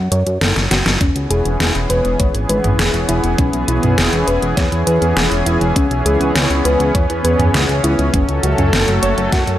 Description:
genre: synthwave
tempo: 101 BPM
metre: 4/4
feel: straight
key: E major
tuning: A4 = 444 Hz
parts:
  - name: thumb-piano-like synth pluck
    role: arpeggios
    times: 0.0-9.6 s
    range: C#4 to F#5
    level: -21 LUFS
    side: left 1 dB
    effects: chorus, digital delay
  - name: fat analog bass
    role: bass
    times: 0.0-9.6 s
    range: E1 to F#2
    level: -18 LUFS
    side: equal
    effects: sidechain pumping
  - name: pop drum kit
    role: drums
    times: 0.1-9.6 s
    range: hi-hat, snare drum, toms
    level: -19 LUFS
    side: equal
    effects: overdrive
  - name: lush unison pad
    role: sustained chords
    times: 1.0-9.6 s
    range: E3 to A4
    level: -18 LUFS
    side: equal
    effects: chorus, vintage 12-bit sampler grit, sidechain pumping
  - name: electronic kick drum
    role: drums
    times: 1.0-9.4 s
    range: none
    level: -17 LUFS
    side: equal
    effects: overdrive
room: light reverb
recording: none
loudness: -13 LUFS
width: side -12 dB against mid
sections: 0.0-9.6 A section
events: drum fill 0.6-1.0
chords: 0.0 F#m; 1.0 E6; 5.8 C#m7; 8.1 F#m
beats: 0.41 | 1.01 1.60 2.20 2.79 | 3.38 3.98 4.57 5.17 | 5.76 6.35 6.95 7.54 | 8.14 8.73 9.32

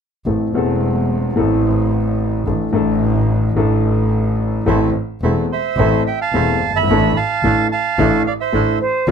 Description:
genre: tango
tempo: 109 BPM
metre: 4/4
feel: rubato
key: A minor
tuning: A4 = 435 Hz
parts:
  - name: warm concert grand piano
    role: accompaniment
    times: 0.3-9.1 s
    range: E1 to A4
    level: -17 LUFS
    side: left 2 dB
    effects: none
  - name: clear double bass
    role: bass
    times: 0.3-9.1 s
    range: E1 to B1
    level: -20 LUFS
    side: right 1 dB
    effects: none
  - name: bandoneon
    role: stabs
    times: 4.7-9.1 s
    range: A3 to E4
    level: -24 LUFS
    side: right 1 dB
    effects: none
  - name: bandoneon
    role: melody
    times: 5.5-8.8 s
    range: C5 to B5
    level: -18 LUFS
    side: right 8 dB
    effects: none
  - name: silver concert flute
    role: second line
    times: 8.8-9.1 s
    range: C5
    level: -17 LUFS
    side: right 3 dB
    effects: none
room: light reverb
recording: close, detailed microphones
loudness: -14 LUFS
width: side -7 dB against mid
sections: 0.3-4.7 A section; 4.7-9.1 B section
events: none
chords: 0.3 Am; 2.5 Dsus2/A; 4.7 Am; 6.9 Dsus2/A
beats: | 0.26 0.81 1.36 1.91 | 2.46 3.00 3.56 4.11 | 4.67 5.23 5.78 6.34 | 6.89 7.43 7.98 8.54 | 9.08

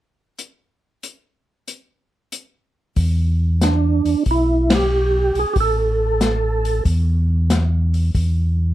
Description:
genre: soul jazz organ trio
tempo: 93 BPM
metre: 4/4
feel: swing 68% on 8ths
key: unclear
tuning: A4 = 440 Hz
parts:
  - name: open jazz drum kit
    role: drums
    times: 0.4-8.4 s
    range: hi-hat, kick drum, ride cymbal, snare drum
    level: -22 LUFS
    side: left 2 dB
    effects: none
  - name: mellow tonewheel organ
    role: bass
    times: 3.0-8.7 s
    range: A1 to E2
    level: -18 LUFS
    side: equal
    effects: chorus vibrato, slow rotary speaker
  - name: percussive tonewheel organ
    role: melody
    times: 3.6-6.8 s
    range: D4 to A4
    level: -18 LUFS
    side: right 3 dB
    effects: slow rotary speaker, chorus vibrato
room: little or no reverb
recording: dark, warm production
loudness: -16 LUFS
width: side -14 dB against mid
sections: 0.4-3.0 A section; 3.0-8.7 B section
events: band accent 4.6-4.9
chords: 0.4 N.C.; 3.0 E5; 5.6 A5; 8.1 N.C.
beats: | 0.39 1.03 1.68 2.33 | 2.97 3.62 4.26 4.91 | 5.56 6.21 6.85 7.50 | 8.14

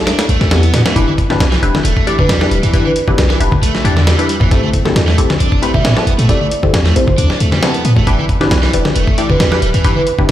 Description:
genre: breakbeat, breaks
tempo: 135 BPM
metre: 4/4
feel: swing 53% on 16ths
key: E minor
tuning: A4 = 439 Hz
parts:
  - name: overdriven electric guitar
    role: riff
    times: 0.1-10.0 s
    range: D3 to D4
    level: -20 LUFS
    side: equal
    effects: ping-pong delay
  - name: dusty soul sampler-style drum kit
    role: drums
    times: 0.1-10.3 s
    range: hi-hat, kick drum, snare drum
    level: -15 LUFS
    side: equal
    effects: studio reverb
  - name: warm 808-style bass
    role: bass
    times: 0.3-10.3 s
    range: D1 to A2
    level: -14 LUFS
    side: equal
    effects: none
  - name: filtered dub chord stab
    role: stabs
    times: 0.5-10.3 s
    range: C4 to D5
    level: -19 LUFS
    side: left 2 dB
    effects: phaser, ping-pong delay
  - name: congas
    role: percussion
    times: 1.1-10.3 s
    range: none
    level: -22 LUFS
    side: left 2 dB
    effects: none
  - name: marimba with soft mallets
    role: melody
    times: 2.2-10.3 s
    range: B4 to E5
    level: -21 LUFS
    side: right 2 dB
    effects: telephone sound, ping-pong delay
room: light reverb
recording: played on a big sound system in a bare room, large studio reverb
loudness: -10 LUFS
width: side -12 dB against mid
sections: 0.0-10.3 A section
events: none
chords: 0.0 Am7; 1.0 Em7; 4.5 Am7; 8.1 Em7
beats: 0.07 0.51 | 0.96 1.40 1.85 2.29 | 2.74 3.18 3.62 4.07 | 4.51 4.96 5.40 5.85 | 6.29 6.74 7.18 7.62 | 8.07 8.51 8.96 9.40 | 9.85 10.29

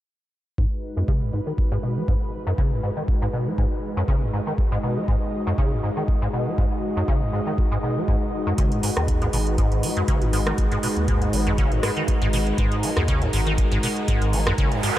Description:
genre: acid house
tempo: 120 BPM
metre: 4/4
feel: swing 54% on 16ths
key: G# minor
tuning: A4 = 438 Hz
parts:
  - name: lush unison pad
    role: sustained chords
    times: 0.6-15.0 s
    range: G#3 to D#5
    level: -27 LUFS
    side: equal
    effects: chorus, sidechain pumping
  - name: liquid acid bass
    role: riff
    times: 0.6-14.9 s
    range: F#2 to F#3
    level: -25 LUFS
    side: equal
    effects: overdrive, wide subtle chorus, tape echo
  - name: electronic kick drum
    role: drums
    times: 0.6-14.7 s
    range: none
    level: -23 LUFS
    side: equal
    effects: overdrive
  - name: saturated sub bass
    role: bass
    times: 8.6-14.7 s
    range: G#1 to D#2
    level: -25 LUFS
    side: equal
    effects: sidechain pumping
  - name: booming analog drum machine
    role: drums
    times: 8.6-14.9 s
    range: hi-hat, rim click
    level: -30 LUFS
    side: right 1 dB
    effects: overdrive
  - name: noise sweep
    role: sound effects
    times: 14.7-15.0 s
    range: none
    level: -26 LUFS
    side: right 5 dB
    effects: none
room: light reverb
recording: none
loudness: -20 LUFS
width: side -14 dB against mid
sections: 0.6-15.0 A section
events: filter sweep on acid bass 0.6-15.0; noise sweep 14.7-15.0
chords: 0.6 G#m7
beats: | 0.58 1.08 1.58 2.08 | 2.58 3.08 3.58 4.08 | 4.58 5.08 5.58 6.08 | 6.58 7.08 7.58 8.08 | 8.58 9.08 9.58 10.08 | 10.58 11.08 11.58 12.08 | 12.58 13.08 13.58 14.08 | 14.58

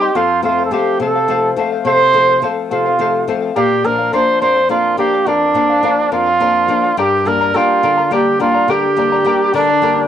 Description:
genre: andean folk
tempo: 70 BPM (dotted quarters)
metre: 6/8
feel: straight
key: G minor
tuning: A4 = 440 Hz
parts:
  - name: mellow trumpet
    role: melody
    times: 0.0-10.1 s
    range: D4 to C5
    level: -13 LUFS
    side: right 3 dB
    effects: cassette tape
  - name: charango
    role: accompaniment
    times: 0.0-10.1 s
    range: G4 to C6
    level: -20 LUFS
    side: left 7 dB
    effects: cassette tape
  - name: flamenco guitar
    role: accompaniment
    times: 0.0-10.1 s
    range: F2 to D4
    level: -21 LUFS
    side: left 6 dB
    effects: cassette tape
  - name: breathy pan flute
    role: second line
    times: 9.5-10.1 s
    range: D4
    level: -22 LUFS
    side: left 11 dB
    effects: cassette tape
room: moderate studio ambience, RT60 0.5 s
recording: home recording on cassette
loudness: -12 LUFS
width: side -10 dB against mid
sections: 0.0-10.1 A section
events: none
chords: 0.2 F; 3.6 Bb; 7.0 Gm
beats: | 0.15 1.00 | 1.86 2.71 | 3.56 4.42 | 5.27 6.13 | 6.98 7.84 | 8.69 9.54

